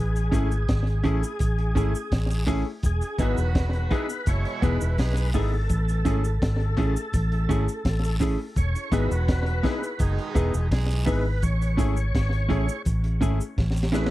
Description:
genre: roots reggae.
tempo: 84 BPM.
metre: 4/4.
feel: straight.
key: unclear.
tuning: A4 = 440 Hz.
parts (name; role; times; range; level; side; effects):
overdriven tonewheel organ; melody; 0.0-14.1 s; G#4 to C#5; -34 LUFS; equal; chorus vibrato, slow rotary speaker, dub echo.
vintage muted fingered electric bass; bass; 0.0-14.1 s; E1 to B1; -24 LUFS; equal; none.
crunchy breakbeat drum kit; drums; 0.2-14.1 s; hi-hat, kick drum, snare drum; -26 LUFS; equal; slapback echo.
cabasa and guiro; percussion; 0.2-14.1 s; none; -41 LUFS; right 1 dB; none.
semi-hollow electric guitar; accompaniment; 0.3-14.1 s; B3 to G#4; -30 LUFS; right 3 dB; dub echo.
bright upright piano; stabs; 0.3-14.1 s; A3 to G#4; -32 LUFS; left 5 dB; none.
mellow horn section; second line; 3.2-11.2 s; B2 to G#4; -37 LUFS; right 6 dB; dub echo.
room: little or no reverb.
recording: dry, close 1970s-style studio recording.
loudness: -22 LUFS.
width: side -16 dB against mid.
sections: 0.0-14.1 A section.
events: drum fill 13.6-14.1.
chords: 0.0 Amaj7; 2.8 Emaj7; 5.7 Amaj7; 8.6 Emaj7; 11.4 Amaj7.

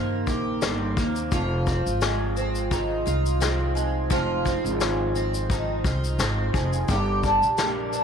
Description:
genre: acoustic pop.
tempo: 86 BPM.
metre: 4/4.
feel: swing 55% on 16ths.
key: unclear.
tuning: A4 = 440 Hz.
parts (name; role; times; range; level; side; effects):
picked twelve-string acoustic guitar; accompaniment; 0.0-8.0 s; F2 to G4; -25 LUFS; right 1 dB; double-tracked left and right.
upright bass; bass; 0.0-8.0 s; F1 to G2; -27 LUFS; equal; none.
vintage brush drum kit; drums; 0.3-8.0 s; kick drum, shaker, snare drum; -29 LUFS; left 3 dB; none.
room: light reverb, small room ambience.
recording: 1960s-style stereo.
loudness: -22 LUFS.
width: side -7 dB against mid.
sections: 0.0-8.0 A section.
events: none.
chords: 0.0 Eb6; 1.3 Fm7; 6.9 Gm.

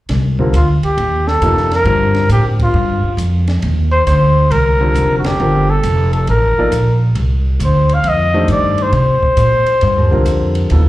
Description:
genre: modal jazz.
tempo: 136 BPM.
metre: 4/4.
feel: swing 67% on 8ths.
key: C dorian.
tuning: A4 = 442 Hz.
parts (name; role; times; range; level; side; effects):
upright bass; bass; 0.1-10.9 s; F1 to C3; -14 LUFS; equal; none.
compact cocktail drum kit; drums; 0.1-10.8 s; hi-hat, kick drum, ride cymbal, snare drum; -27 LUFS; equal; none.
clear grand piano; accompaniment; 0.4-10.9 s; C3 to D5; -19 LUFS; equal; plate reverb, slapback echo.
breathy trumpet; melody; 0.6-10.6 s; F4 to F5; -15 LUFS; left 1 dB; plate reverb, slapback echo.
room: light reverb.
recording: live gig heard through the venue's PA, club reverb.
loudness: -11 LUFS.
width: side -16 dB against mid.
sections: 0.1-10.9 A section.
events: band accent 2.5, 5.2.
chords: 0.1 Cm11.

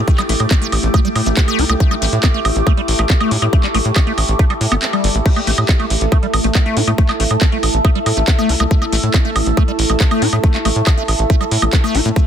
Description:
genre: psychedelic trance.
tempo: 139 BPM.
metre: 4/4.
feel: straight.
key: unclear.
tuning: A4 = 443 Hz.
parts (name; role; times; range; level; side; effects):
overtone-sweeping drone; sustained chords; 0.0-12.3 s; A3 to A4; -23 LUFS; equal; chorus, built-in reverb, phaser, sidechain pumping.
tight sequencer bass; bass; 0.0-12.1 s; G1 to A2; -17 LUFS; equal; none.
warbly tape-like pad; texture; 0.0-12.3 s; E4 to D6; -23 LUFS; right 2 dB; chorus, built-in reverb, phaser, sidechain pumping.
liquid acid bass; riff; 0.1-12.2 s; G3 to E4; -22 LUFS; moving between left 6 dB and right 6 dB; phaser, auto-pan, sidechain pumping, tape echo.
drum and bass drum kit; drums; 0.1-12.2 s; crash cymbal, handclaps, hi-hat, woodblock; -20 LUFS; right 2 dB; none.
electronic kick drum; drums; 0.1-12.2 s; none; -13 LUFS; equal; none.
room: little or no reverb.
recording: dense, heavily limited modern master.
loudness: -12 LUFS.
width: side -9 dB against mid.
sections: 0.0-12.3 A section.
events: kick drops out 4.8-5.3.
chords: 0.0 A5.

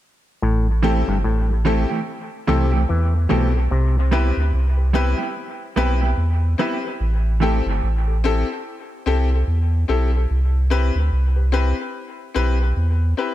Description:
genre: reggae.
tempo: 73 BPM.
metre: 4/4.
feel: swing 58% on 16ths.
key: A minor.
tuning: A4 = 441 Hz.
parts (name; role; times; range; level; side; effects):
auto-wah clav; riff; 0.4-4.0 s; G2 to E3; -25 LUFS; left 3 dB; dub echo.
warm sub bass; bass; 0.4-13.1 s; G1 to E2; -18 LUFS; equal; none.
mellow electric guitar; accompaniment; 0.8-7.6 s; E3 to G4; -25 LUFS; right 5 dB; dub echo.
bright grand piano; stabs; 0.8-13.3 s; C4 to B4; -25 LUFS; left 6 dB; dub echo.
room: digital ambience.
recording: echo-heavy mix.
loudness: -17 LUFS.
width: side -14 dB against mid.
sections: 0.4-13.3 A section.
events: none.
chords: 0.4 Am7; 3.7 Cmaj7; 7.0 Am7; 10.3 Cmaj7.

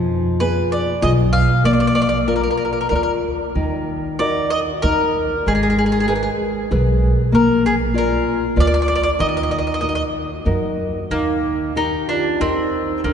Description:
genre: italian folk, Italian serenade.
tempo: 95 BPM.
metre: 3/4.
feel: straight.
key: Eb harmonic minor.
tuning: A4 = 440 Hz.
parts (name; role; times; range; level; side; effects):
nylon-string guitar; accompaniment; 0.0-13.1 s; D3 to D5; -21 LUFS; left 3 dB; none.
upright bass; bass; 0.0-13.1 s; Ab1 to Gb2; -21 LUFS; right 1 dB; none.
bowl-back mandolin; melody; 0.4-13.1 s; Bb3 to F5; -21 LUFS; equal; none.
vibraphone with soft mallets; second line; 11.1-13.1 s; D4 to G4; -22 LUFS; right 5 dB; none.
room: wet cathedral reverb, RT60 4.5 s.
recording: recorded in a church or concert hall, nothing above 10.9 kHz.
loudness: -16 LUFS.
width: side -7 dB against mid.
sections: 0.0-11.1 A section; 11.1-13.1 B section.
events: none.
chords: 0.0 Fdim; 1.7 Bb; 3.6 Ebm; 5.5 Abmadd9; 7.3 Bb; 9.2 Ebm; 11.1 Eb.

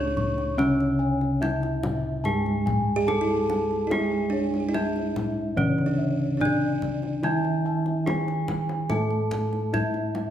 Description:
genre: Javanese gamelan.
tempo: 72 BPM.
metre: 4/4.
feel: straight.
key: C# pelog.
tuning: A4 = 440 Hz.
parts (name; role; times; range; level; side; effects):
gamelan-type bronze metallophone; melody; 0.0-10.3 s; C#4 to C#5; -28 LUFS; equal; none.
buzzing kalimba; second line; 0.0-8.3 s; C#4 to G#4-30c; -31 LUFS; right 5 dB; none.
gamelan-type bronze metallophone; accompaniment; 0.0-10.3 s; C#3 to A3-20c; -29 LUFS; left 1 dB; none.
gamelan-type bossed gongs; arpeggios; 0.0-10.2 s; A4-20c to C#6; -34 LUFS; left 6 dB; tape echo.
gamelan-type bronze metallophone; arpeggios; 0.0-10.3 s; C#5 to C#6; -36 LUFS; right 3 dB; none.
gamelan-type bossed gongs; bass; 0.0-10.3 s; C#2 to G#4-30c; -31 LUFS; right 1 dB; none.
kendang; percussion; 0.2-10.3 s; none; -33 LUFS; left 1 dB; none.
room: wet recital hall reverb, RT60 1.4 s.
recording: none.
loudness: -23 LUFS.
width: side -10 dB against mid.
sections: 0.0-10.3 A section.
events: none.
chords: none.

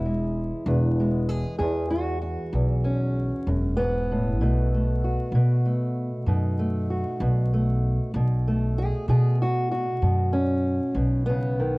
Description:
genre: acoustic country blues, solo or duo.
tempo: 64 BPM (dotted quarters).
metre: 12/8.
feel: straight.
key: unclear.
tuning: A4 = 438 Hz.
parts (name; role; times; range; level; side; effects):
fingerpicked old ladder-braced acoustic guitar; melody; 0.0-11.8 s; E2 to G#4; -26 LUFS; equal; cassette tape.
upright bass; bass; 0.0-11.8 s; E1 to B2; -24 LUFS; equal; none.
room: light reverb.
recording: home recording on cassette, vinyl crackle.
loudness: -22 LUFS.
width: side -24 dB against mid.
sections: 0.0-11.8 A section.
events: none.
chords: 0.0 E; 4.4 B7.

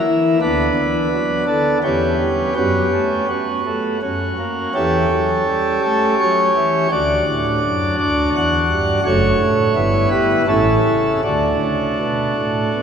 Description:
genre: classical, chorale-style piece for pipe organ.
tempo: 83 BPM.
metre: 3/4.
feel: rubato.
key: D major from 4.8 s.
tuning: A4 = 439 Hz.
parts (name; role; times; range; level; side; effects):
pipe organ, principal chorus; solo; 0.0-12.8 s; F#1 to F#5; -15 LUFS; equal; none.
room: wet church reverb, RT60 3.5 s.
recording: recorded in a church or concert hall.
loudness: -15 LUFS.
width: side -7 dB against mid.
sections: 0.0-12.8 A section.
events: none.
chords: 0.4 Bm/D; 1.8 C#m7b5/E; 2.6 F#sus4; 4.0 F#; 4.8 A7/E; 6.9 D; 9.0 F#m; 9.8 Em/G; 10.5 A; 11.2 D.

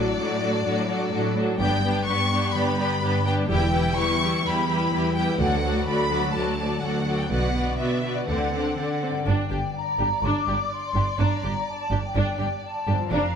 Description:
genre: cinematic, heroic adventure film score.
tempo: 126 BPM.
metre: 4/4.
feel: straight.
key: G minor from 9.3 s.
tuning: A4 = 441 Hz.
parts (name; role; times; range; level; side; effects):
warm symphonic violin section; melody; 0.0-13.4 s; D5 to C#6; -29 LUFS; left 2 dB; none.
warm symphonic violin section; second line; 0.0-13.3 s; D4 to D5; -30 LUFS; left 2 dB; none.
rich symphonic viola section; accompaniment; 0.0-13.3 s; F#3 to F#4; -29 LUFS; right 1 dB; none.
concert harp; arpeggios; 0.0-13.4 s; F2 to G5; -32 LUFS; left 8 dB; none.
rich symphonic double bass section; bass; 0.0-13.2 s; E1 to D2; -27 LUFS; right 3 dB; none.
warm symphonic cello section; bass; 0.0-13.2 s; D2 to D3; -28 LUFS; right 2 dB; none.
large flute ensemble; second line; 8.8-13.4 s; F#5 to D6; -28 LUFS; left 3 dB; none.
room: moderate scoring stage reverb, RT60 1.6 s.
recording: none.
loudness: -22 LUFS.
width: side -7 dB against mid.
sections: 0.0-9.3 A section; 9.3-13.4 B section.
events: none.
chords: 0.0 D/A; 1.6 G; 3.5 Em; 5.4 D; 7.3 Bm; 8.3 D7; 9.3 Gm.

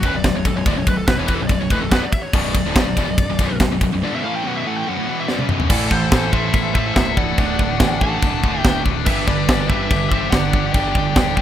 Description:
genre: heavy metal.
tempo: 143 BPM.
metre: 4/4.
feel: straight.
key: B minor.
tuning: A4 = 440 Hz.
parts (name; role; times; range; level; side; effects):
high-gain lead guitar; melody; 0.0-11.4 s; A4 to A5; -25 LUFS; equal; distortion.
crunchy overdriven guitar; riff; 0.0-11.4 s; B1 to A3; -28 LUFS; equal; none.
scooped high-gain guitar; riff; 0.0-11.4 s; B1 to A3; -25 LUFS; right 10 dB; distortion.
tight distorted guitar; riff; 0.0-11.4 s; B1 to A4; -24 LUFS; left 12 dB; distortion.
growling picked electric bass; bass; 0.0-11.4 s; B0 to A1; -26 LUFS; equal; overdrive.
tight metal drum kit; drums; 0.0-11.4 s; china cymbal, crash cymbal, kick drum, ride cymbal, snare drum, toms; -18 LUFS; equal; none.
high-gain lead guitar; second line; 5.7-11.4 s; A4 to F#5; -29 LUFS; right 3 dB; distortion.
room: light reverb.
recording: rough home demo mix.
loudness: -16 LUFS.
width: side -10 dB against mid.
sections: 0.0-5.7 A section; 5.7-11.4 B section.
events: lead electric guitar solo 0.0-5.7; break 4.0-5.7; drum fill 5.3-5.7.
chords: 0.0 Bm; 5.7 Am; 7.4 D; 9.1 G.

